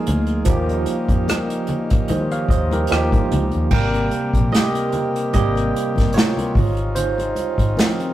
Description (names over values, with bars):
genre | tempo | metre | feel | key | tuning
R&B, neo-soul | 74 BPM | 4/4 | swing 56% on 16ths | Ab major | A4 = 442 Hz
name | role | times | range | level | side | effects
barky tine electric piano | accompaniment | 0.0-8.1 s | C3 to G5 | -21 LUFS | right 2 dB | overdrive, slow stereo tremolo
pedal harmonium | sustained chords | 0.0-8.1 s | C3 to Ab4 | -29 LUFS | left 1 dB | none
vintage muted fingered electric bass | bass | 0.1-7.8 s | G1 to Eb3 | -22 LUFS | equal | none
unplugged drum kit | drums | 0.1-8.1 s | crash cymbal, hi-hat, kick drum, rim click, snare drum | -19 LUFS | equal | none
congas | percussion | 0.1-8.0 s | none | -29 LUFS | left 1 dB | none
room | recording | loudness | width
light reverb | rough rehearsal-room recording, tube saturation | -17 LUFS | side -13 dB against mid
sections
0.0-3.7 A section; 3.7-8.1 B section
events
tine electric piano solo 3.7-8.1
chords
0.5 Eb7; 2.9 Eb9; 3.7 Abmaj9; 6.5 Dbmaj9/Ab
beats
| 0.47 1.28 2.09 2.90 | 3.71 4.52 5.33 6.14 | 6.95 7.76